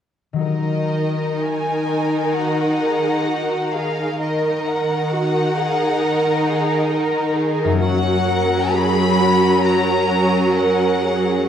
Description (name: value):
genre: cinematic, emotional film score for orchestra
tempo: 66 BPM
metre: 4/4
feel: rubato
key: Eb minor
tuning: A4 = 440 Hz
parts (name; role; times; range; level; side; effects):
- concert harp; arpeggios; 0.3-11.5 s; Gb2 to Bb4; -25 LUFS; left 4 dB; none
- warm symphonic violin section; melody; 0.4-11.5 s; Eb5 to Cb6; -24 LUFS; left 3 dB; none
- clear studio violin section; second line; 0.4-11.4 s; Db4 to Bb4; -22 LUFS; left 1 dB; none
- rich symphonic viola section; accompaniment; 0.4-11.4 s; Eb3 to Gb3; -21 LUFS; right 2 dB; none
- warm symphonic cello section; bass; 2.4-11.5 s; Gb4 to Bb4; -24 LUFS; right 3 dB; none
room: wet scoring stage reverb, RT60 1.7 s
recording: dark, warm production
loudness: -16 LUFS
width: side -9 dB against mid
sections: 0.4-11.5 A section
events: none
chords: 0.4 Ebm; 7.8 Gb